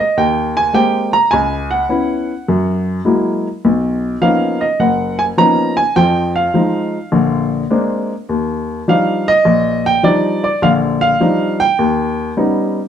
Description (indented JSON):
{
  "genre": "solo jazz",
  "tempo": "103 BPM",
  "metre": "4/4",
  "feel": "swing 68% on 8ths",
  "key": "Eb major",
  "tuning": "A4 = 440 Hz",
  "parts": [
    { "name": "warm upright piano", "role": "solo", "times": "0.0-12.8 s", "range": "F#1 to Bb5", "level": "-13 LUFS", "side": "equal", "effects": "none" }
  ],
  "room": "moderate studio reverb, RT60 0.7 s",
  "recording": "dark, warm production",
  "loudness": "-13 LUFS",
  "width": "side -9 dB against mid",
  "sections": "0.0-12.9 A section",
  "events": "none",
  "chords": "0.0 Abmaj9; 1.3 Dbm7; 2.5 Gb9; 3.6 Bmaj9#11; 6.0 Fm7; 7.1 Bb9; 8.3 Ebmaj9; 11.8 Ebaug7"
}